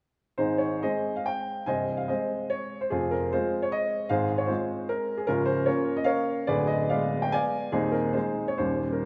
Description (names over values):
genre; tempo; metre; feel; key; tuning
classical, romantic triple-time dance for piano with dotted rhythms; 122-165 BPM; 3/4; rubato; Ab major; A4 = 441 Hz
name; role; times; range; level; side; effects
clear baby grand piano; solo; 0.4-9.1 s; C1 to Ab5; -27 LUFS; equal; none
room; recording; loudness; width
moderate scoring stage reverb, RT60 2.0 s; dark, warm production; -28 LUFS; mono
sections
0.4-9.1 A section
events
none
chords
0.4 Ab; 1.7 Ab/C; 2.9 Fm; 4.1 Fm/Ab; 5.3 Bbm/Db; 6.5 Ddim7; 7.7 Ab/Eb; 8.6 Eb7